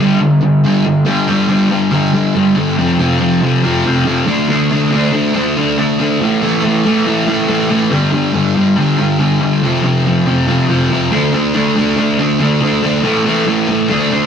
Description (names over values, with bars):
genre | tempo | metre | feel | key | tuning
rock | 140 BPM | 4/4 | straight | D minor | A4 = 440 Hz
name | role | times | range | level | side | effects
sludgy distorted guitar | solo | 0.0-14.3 s | F2 to D4 | -11 LUFS | equal | overdrive
room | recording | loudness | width
moderate stone room reverb, RT60 1.0 s | rough rehearsal-room recording | -11 LUFS | side -7 dB against mid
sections
0.0-1.1 A section; 1.1-14.3 B section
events
none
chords
0.0 G5; 2.8 F5; 4.3 D5; 6.2 A5; 7.9 G5; 9.6 F5; 11.1 D5; 13.0 A5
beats
0.20 0.63 | 1.05 1.48 1.91 2.34 | 2.77 3.20 3.62 4.05 | 4.48 4.91 5.34 5.77 | 6.20 6.62 7.05 7.48 | 7.91 8.34 8.76 9.19 | 9.62 10.04 10.47 10.90 | 11.32 11.75 12.18 12.60 | 13.03 13.46 13.88